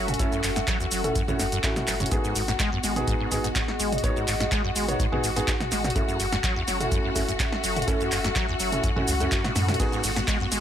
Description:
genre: acid house.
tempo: 125 BPM.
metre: 4/4.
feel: straight.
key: unclear.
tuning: A4 = 442 Hz.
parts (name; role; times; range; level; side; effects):
clear studio string section; sustained chords; 0.0-10.6 s; F#4; -32 LUFS; left 4 dB; sidechain pumping.
acid bass, saw; riff; 0.0-10.6 s; F#1 to G#3; -30 LUFS; equal; wide subtle chorus, tape echo.
warm sub bass; bass; 0.0-10.6 s; F#1 to F#2; -32 LUFS; equal; sidechain pumping.
warbly tape-like pad; texture; 0.0-10.6 s; B3 to F#5; -32 LUFS; equal; chorus, built-in reverb, sidechain pumping.
punchy analog drum machine; drums; 0.1-10.6 s; handclaps, hi-hat, ride cymbal, shaker, snare drum, toms; -28 LUFS; right 1 dB; none.
dark concert grand piano; stabs; 0.2-10.0 s; A3 to C#5; -31 LUFS; right 2 dB; tape echo.
electronic kick drum; drums; 0.2-10.4 s; none; -29 LUFS; equal; none.
room: light reverb.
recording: none.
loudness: -22 LUFS.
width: side -10 dB against mid.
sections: 0.0-10.6 A section.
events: drum fill 1.9.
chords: 0.0 F#m7; 2.1 G#m7; 6.0 F#m7; 9.8 G#m7.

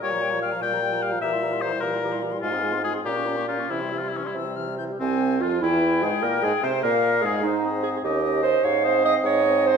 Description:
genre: quick classical-period movement for wind quintet.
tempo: 99 BPM (dotted quarters).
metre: 6/8.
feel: rubato.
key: F minor.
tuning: A4 = 442 Hz.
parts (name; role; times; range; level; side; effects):
silver concert flute; melody; 0.0-9.8 s; C5 to G6; -31 LUFS; left 10 dB; none.
warm oboe; second line; 0.0-9.8 s; C4 to G5; -28 LUFS; left 5 dB; none.
clear French horn; accompaniment; 0.0-9.8 s; C3 to Db4; -31 LUFS; left 2 dB; none.
mellow clarinet; accompaniment; 0.0-9.8 s; C4 to Eb5; -25 LUFS; right 6 dB; none.
warm bassoon; bass; 0.0-9.8 s; C2 to C3; -28 LUFS; right 1 dB; none.
room: wet recital hall reverb, RT60 1.5 s.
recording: none.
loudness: -21 LUFS.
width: side -6 dB against mid.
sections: 0.0-5.0 A section; 5.0-9.8 B section.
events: none.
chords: 0.0 Gm7b5/Bb; 1.2 C7/Bb; 2.4 Fm/Ab; 3.1 Bbm; 3.7 C; 5.0 Fm/C; 5.6 E; 6.2 Fm; 7.4 Ab; 8.0 Eb7; 8.6 Ab.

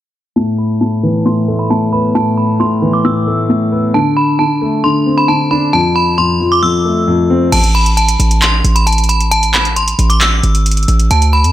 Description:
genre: hip hop, trap.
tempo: 134 BPM.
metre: 4/4.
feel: half-time.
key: A minor.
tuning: A4 = 440 Hz.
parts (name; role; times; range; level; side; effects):
metallic FM bell; melody; 0.4-11.5 s; A5 to E6; -16 LUFS; right 1 dB; chorus, low-pass filter.
dark baby grand piano; accompaniment; 0.4-7.5 s; F2 to D4; -12 LUFS; left 1 dB; low-pass filter.
hard-hitting 808-style bass; bass; 7.5-11.5 s; G#1 to F2; -12 LUFS; equal; none.
booming analog drum machine; drums; 7.5-11.5 s; crash cymbal, handclaps, hi-hat; -17 LUFS; right 1 dB; none.
room: little or no reverb.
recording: none.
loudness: -10 LUFS.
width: side -13 dB against mid.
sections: 0.4-7.5 A section; 7.5-11.5 B section.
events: filter sweep 0.4-7.5.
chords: 0.4 Asus2; 3.9 D5; 5.7 F; 7.5 A5.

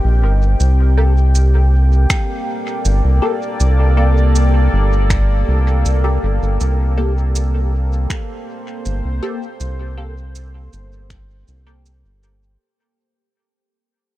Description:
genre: ambient dub.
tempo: 80 BPM.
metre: 4/4.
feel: straight.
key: unclear.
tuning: A4 = 441 Hz.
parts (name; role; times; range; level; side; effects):
deep dark ambient pad; sustained chords; 0.0-12.6 s; Bb3 to G5; -23 LUFS; left 1 dB; chorus, built-in reverb.
round analog bass; bass; 0.0-12.6 s; G1 to C2; -14 LUFS; equal; tube saturation.
electronic shaker and finger snaps; drums; 0.6-12.4 s; none; -27 LUFS; right 1 dB; dub echo.
filtered dub chord stab; stabs; 1.0-11.9 s; Bb3 to A4; -26 LUFS; left 2 dB; phaser, analog chorus, dub echo.
electronic kick drum; drums; 2.1-11.3 s; none; -19 LUFS; equal; none.
room: little or no reverb.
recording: none.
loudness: -13 LUFS.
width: side -16 dB against mid.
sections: 0.0-12.6 A section.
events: fade-out 4.6-12.6.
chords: 0.0 Cm7; 0.6 Gmadd9.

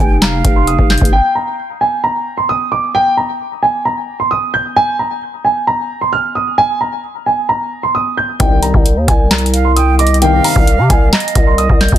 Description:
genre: hip hop, trap.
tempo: 132 BPM.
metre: 4/4.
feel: half-time.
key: C minor.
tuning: A4 = 440 Hz.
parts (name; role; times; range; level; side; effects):
dark concert grand piano; melody; 0.0-12.0 s; G5 to G6; -15 LUFS; right 2 dB; ping-pong delay.
silver concert flute; second line; 0.0-1.1, 9.5-12.0 s; Eb5 to G5; -20 LUFS; right 7 dB; ping-pong delay.
growling 808-style bass; bass; 0.0-1.1, 8.4-12.0 s; F1 to C3; -13 LUFS; equal; none.
booming analog drum machine; drums; 0.2-1.2, 8.4-12.0 s; handclaps, hi-hat, kick drum, snare drum; -12 LUFS; equal; none.
warm brass ensemble; stabs; 8.4-10.7 s; G2 to Eb3; -18 LUFS; left 11 dB; none.
room: small room ambience.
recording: dense, heavily limited modern master.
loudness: -11 LUFS.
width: side -11 dB against mid.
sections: 0.0-1.1 A section; 1.1-12.0 A section.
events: none.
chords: 0.0 N.C.; 8.4 Cm.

